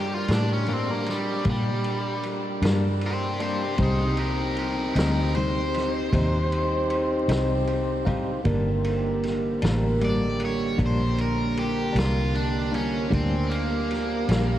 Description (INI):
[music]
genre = slow blues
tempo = 52 BPM (dotted quarters)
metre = 12/8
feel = straight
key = G minor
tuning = A4 = 440 Hz
[part]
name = biting overdriven guitar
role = melody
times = 0.0-14.6 s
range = G3 to D5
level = -30 LUFS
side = left 1 dB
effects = none
[part]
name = bell-like tine electric piano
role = accompaniment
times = 0.0-14.6 s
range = G3 to G5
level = -32 LUFS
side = right 3 dB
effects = none
[part]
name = tonewheel organ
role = sustained chords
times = 0.0-14.6 s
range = D3 to D5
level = -29 LUFS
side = equal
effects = slow rotary speaker
[part]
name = vintage muted fingered electric bass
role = bass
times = 0.0-14.6 s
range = G1 to Bb2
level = -27 LUFS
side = equal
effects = none
[part]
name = clean electric guitar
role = accompaniment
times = 0.3-14.5 s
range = G2 to Eb4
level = -33 LUFS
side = left 3 dB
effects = tremolo
[part]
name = vintage drum kit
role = drums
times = 0.3-14.5 s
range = kick drum, ride cymbal, snare drum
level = -31 LUFS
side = equal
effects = vintage 12-bit sampler grit
[sound]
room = wet huge ambient reverb, RT60 7.5 s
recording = dreamy mix soaked in reverb, vinyl crackle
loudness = -22 LUFS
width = side -12 dB against mid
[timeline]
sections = 0.0-14.6 A section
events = overdriven electric guitar solo 0.0-14.6; tine electric piano fill 7.3-8.5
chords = 0.0 Gm; 3.8 Cm; 8.5 Gm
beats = 0.30 1.46 2.63 | 3.80 4.96 6.13 7.30 | 8.46 9.63 10.79 11.96 | 13.12 14.28